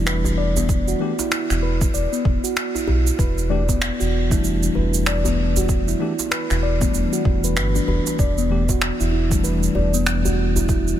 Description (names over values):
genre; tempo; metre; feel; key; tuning
organic downtempo; 96 BPM; 4/4; swing 60% on 16ths; E minor; A4 = 438 Hz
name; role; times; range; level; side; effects
tine electric piano; accompaniment; 0.0-11.0 s; E3 to G4; -26 LUFS; left 3 dB; medium stereo tremolo, sidechain pumping, ping-pong delay
steel tongue drum; arpeggios; 0.0-11.0 s; B3 to D5; -24 LUFS; right 1 dB; ping-pong delay
round analog bass; bass; 0.0-10.9 s; E1 to B1; -22 LUFS; equal; sidechain pumping
electronic finger snaps and shaker; drums; 0.1-11.0 s; none; -26 LUFS; right 2 dB; soft clipping on snare
djembe; percussion; 0.2-10.7 s; none; -29 LUFS; left 1 dB; none
electronic kick drum; drums; 0.7-10.8 s; none; -21 LUFS; equal; none
room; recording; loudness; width
light reverb; dense, heavily limited modern master; -18 LUFS; side -11 dB against mid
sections
0.0-11.0 A section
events
none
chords
0.0 Emadd9